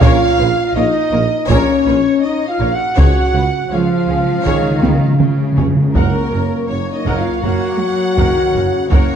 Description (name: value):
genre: cinematic, epic orchestral film score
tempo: 81 BPM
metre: 4/4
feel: straight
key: F# major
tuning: A4 = 441 Hz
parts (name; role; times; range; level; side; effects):
- warm symphonic violin section; melody; 0.0-9.2 s; A#4 to F#5; -26 LUFS; left 2 dB; none
- clear symphonic violin section; second line; 0.0-9.2 s; G#4 to F#5; -27 LUFS; left 2 dB; none
- clear symphonic viola section; accompaniment; 0.0-9.2 s; C#4 to F#5; -27 LUFS; right 2 dB; none
- bright trombone section; sustained chords; 0.0-9.2 s; G#2 to C#4; -27 LUFS; right 4 dB; none
- mellow French horn section; sustained chords; 0.0-9.2 s; A#3 to F#4; -18 LUFS; left 3 dB; none
- warm trumpet section; stabs; 0.0-9.2 s; C#5 to F#5; -23 LUFS; right 3 dB; none
- clear symphonic double bass section; bass; 0.0-9.0 s; A#1 to F#2; -23 LUFS; right 4 dB; none
- mellow tuba; bass; 0.0-9.1 s; F#1 to C#2; -23 LUFS; right 4 dB; none
- rich symphonic cello section; bass; 0.0-9.2 s; A#2 to A#3; -21 LUFS; right 3 dB; none
- taiko ensemble; drums; 0.0-9.2 s; none; -16 LUFS; equal; none
- timpani; percussion; 3.0-5.9 s; C#3; -19 LUFS; equal; none
room: moderate scoring stage reverb, RT60 1.8 s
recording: dark, warm production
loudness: -12 LUFS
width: side -8 dB against mid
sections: 0.0-5.9 A section; 5.9-9.2 B section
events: timpani fill 3.0-5.9; drum fill 4.8-5.9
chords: 0.0 A#m; 3.0 C#; 5.9 F#